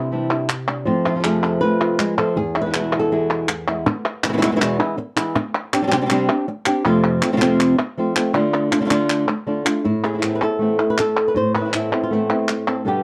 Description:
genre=flamenco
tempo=160 BPM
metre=4/4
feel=straight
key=unclear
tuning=A4 = 437 Hz
part: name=flamenco guitar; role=melody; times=0.0-13.0 s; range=E2 to C5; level=-21 LUFS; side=equal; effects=none
part: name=flamenco guitar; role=stabs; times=0.0-3.9, 9.9-13.0 s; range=E2 to G4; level=-26 LUFS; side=equal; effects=none
part: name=palmas hand claps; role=percussion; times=0.3-12.9 s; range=none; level=-25 LUFS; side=equal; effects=none
room=moderate studio reverb, RT60 0.6 s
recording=dark, warm production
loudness=-20 LUFS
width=mono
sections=0.0-3.9 A section; 3.9-9.8 B section; 9.8-13.0 C section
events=none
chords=0.0 Cadd9; 0.9 F; 2.4 E; 5.4 Csus2; 6.9 F; 8.4 Dm; 9.8 Amadd9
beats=0.12 0.49 | 0.87 1.24 1.62 1.99 | 2.37 2.74 3.12 3.49 | 3.86 4.24 4.61 4.98 | 5.36 5.73 6.11 6.48 | 6.85 7.23 7.60 7.98 | 8.35 8.72 9.10 9.47 | 9.85 10.23 10.60 10.98 | 11.35 11.73 12.11 12.48 | 12.86

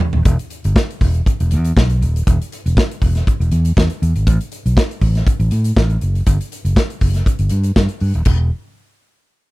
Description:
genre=disco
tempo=120 BPM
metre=4/4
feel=straight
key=unclear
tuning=A4 = 440 Hz
part: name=modern studio drum kit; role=drums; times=0.0-8.4 s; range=crash cymbal, hi-hat, kick drum, snare drum, toms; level=-16 LUFS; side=equal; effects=none
part: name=fingered electric bass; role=bass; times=0.1-8.5 s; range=D#1 to A2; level=-15 LUFS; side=equal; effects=none
room=little or no reverb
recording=none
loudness=-14 LUFS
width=side -20 dB against mid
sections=0.3-8.3 A section; 8.3-9.5 B section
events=drum fill 0.0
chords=none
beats=| 0.25 0.75 1.25 1.76 | 2.26 2.76 3.26 3.76 | 4.26 4.76 5.26 5.76 | 6.26 6.76 7.26 7.76 | 8.26

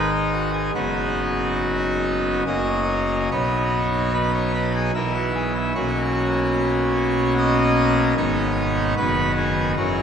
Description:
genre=classical, chorale-style piece for pipe organ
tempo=73 BPM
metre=3/4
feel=uneven beats, rubato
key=B major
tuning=A4 = 435 Hz
part: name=pipe organ, full organ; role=solo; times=0.0-10.0 s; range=F#1 to D#5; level=-19 LUFS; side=equal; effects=none
room=wet cathedral reverb, RT60 5.9 s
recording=none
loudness=-19 LUFS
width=side -7 dB against mid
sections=0.0-10.0 A section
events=none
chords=0.0 G#m; 0.8 B/F#; 2.5 F#; 3.3 B; 5.0 E5/B; 5.8 F#/B; 8.2 G#m; 9.0 B/F#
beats=| 0.75 1.59 2.47 | 3.31 4.14 4.95 | 5.75 6.55 7.38 | 8.18 8.97 9.77

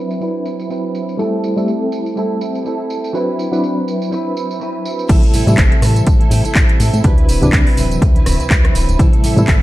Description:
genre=filtered disco house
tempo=123 BPM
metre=4/4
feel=swing 57% on 16ths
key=A dorian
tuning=A4 = 439 Hz
part: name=reed electric piano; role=accompaniment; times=0.0-9.6 s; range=C3 to B4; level=-19 LUFS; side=equal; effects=fast tremolo, phaser, sidechain pumping, low-pass filter
part: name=direct-recorded clean electric guitar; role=riff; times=0.0-9.6 s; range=F#3 to B4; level=-22 LUFS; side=right 3 dB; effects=ensemble chorus, sidechain pumping, low-pass filter
part: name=house drum kit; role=drums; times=0.1-9.6 s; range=crash cymbal, handclaps, hi-hat, rim click, tambourine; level=-22 LUFS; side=equal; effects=overdrive, sidechain pumping on hats, low-pass filter on hats, low-pass filter on snare, sidechain pumping on cymbals, low-pass filter on cymbals, sidechain pumping on perc, low-pass filter on perc, low-pass filter on room
part: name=tambourine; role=percussion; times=0.1-5.1 s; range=none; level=barely audible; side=none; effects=none
part: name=plucky analog bass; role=bass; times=5.1-9.6 s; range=D1 to A2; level=-16 LUFS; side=equal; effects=sidechain pumping, low-pass filter
part: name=electronic kick drum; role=drums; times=5.1-9.6 s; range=none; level=-13 LUFS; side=equal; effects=overdrive
room=light reverb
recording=dark, warm production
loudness=-13 LUFS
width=side -16 dB against mid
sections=0.0-5.1 A section; 5.1-9.6 B section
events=filter sweep 0.0-5.1; drop 5.1-9.6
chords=0.0 D13; 1.2 Am7; 3.1 D13; 5.1 Am7; 7.0 D13; 9.0 Am7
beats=0.21 0.70 | 1.19 1.68 2.16 2.65 | 3.14 3.63 4.12 4.60 | 5.09 5.58 6.07 6.55 | 7.04 7.53 8.02 8.51 | 8.99 9.48

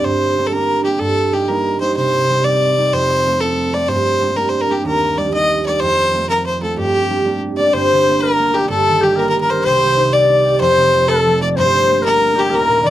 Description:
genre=celtic folk, Celtic jig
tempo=125 BPM (dotted quarters)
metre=6/8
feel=straight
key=G minor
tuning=A4 = 439 Hz
part: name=clear fiddle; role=melody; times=0.0-12.9 s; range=G4 to Eb5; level=-15 LUFS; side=left 1 dB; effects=none
part: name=concert harp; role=accompaniment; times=0.0-12.9 s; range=Eb1 to G4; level=-18 LUFS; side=right 4 dB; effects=none
part: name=bright reedy baroque flute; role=second line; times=7.6-12.9 s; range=G4 to D5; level=-18 LUFS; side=left 5 dB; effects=none
room=light reverb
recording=dry, close 1970s-style studio recording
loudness=-13 LUFS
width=side -13 dB against mid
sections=0.0-7.7 A section; 7.7-12.9 A section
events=none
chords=0.0 Gm; 1.0 Eb/G; 2.0 Cm; 2.9 F; 3.9 Gm; 4.9 Eb; 5.8 F; 6.8 Gm; 8.7 Eb/G; 9.7 Cm; 10.6 F; 11.6 Gm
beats=| 0.05 0.53 | 1.00 1.49 | 1.97 2.45 | 2.93 3.41 | 3.89 4.37 | 4.85 5.33 | 5.81 6.29 | 6.78 7.26 | 7.74 8.22 | 8.70 9.17 | 9.65 10.13 | 10.61 11.08 | 11.56 12.04 | 12.51

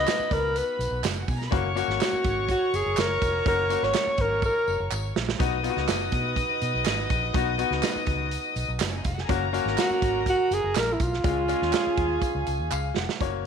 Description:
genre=uptempo 1960s-style soul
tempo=123 BPM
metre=4/4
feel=straight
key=F# major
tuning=A4 = 440 Hz
part: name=breathy alto saxophone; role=melody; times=0.0-4.9, 9.8-12.7 s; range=E4 to D#5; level=-25 LUFS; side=equal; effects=slapback echo
part: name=clear saxophone section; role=second line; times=0.0-12.9 s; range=C#4 to C#5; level=-35 LUFS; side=right 10 dB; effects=slapback echo
part: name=warm studio violin section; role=second line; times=0.0-12.9 s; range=B3 to D#6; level=-32 LUFS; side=left 4 dB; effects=none
part: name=bright upright piano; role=accompaniment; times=0.0-13.5 s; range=G#3 to G#5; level=-30 LUFS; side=left 13 dB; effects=none
part: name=vintage muted fingered electric bass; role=bass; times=0.0-13.5 s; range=E#1 to B2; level=-31 LUFS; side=equal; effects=none
part: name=natural country drum kit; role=drums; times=0.1-13.3 s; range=hi-hat, kick drum, snare drum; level=-29 LUFS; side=right 4 dB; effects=none
part: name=handclaps and tambourine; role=percussion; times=0.1-13.3 s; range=none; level=-38 LUFS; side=right 4 dB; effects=none
room=light reverb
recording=1960s-style stereo with parts hard left and right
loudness=-23 LUFS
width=side -7 dB against mid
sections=0.0-13.2 A section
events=drum fill 4.4-5.4, 12.7-13.2; upright piano fill 12.2-13.2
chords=0.0 B; 1.5 F#; 5.4 B; 9.3 F#; 11.2 C#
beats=0.07 0.55 1.04 | 1.52 2.00 2.49 2.97 | 3.46 3.94 4.43 4.91 | 5.40 5.88 6.37 6.86 | 7.34 7.83 8.32 8.80 | 9.29 9.78 10.27 10.76 | 11.24 11.73 12.22 12.71 | 13.20

